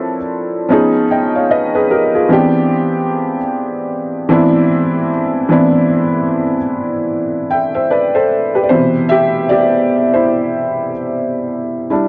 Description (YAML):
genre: hip hop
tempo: 75 BPM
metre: 4/4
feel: swing 60% on 16ths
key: C major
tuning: A4 = 440 Hz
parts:
  - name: felt-muted upright piano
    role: solo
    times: 0.0-12.1 s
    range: B2 to G5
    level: -12 LUFS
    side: equal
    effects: cassette tape, low-pass filter
room: light reverb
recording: dry, gritty hardware recording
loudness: -12 LUFS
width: side -26 dB against mid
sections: 0.0-8.7 A section; 8.7-12.1 A section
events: felt piano solo 8.7-12.1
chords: 0.0 Dm9; 0.7 Db9; 2.3 Cmaj7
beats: 0.70 1.50 | 2.30 3.10 3.90 4.70 | 5.50 6.30 7.10 7.90 | 8.70 9.50 10.30 11.10 | 11.90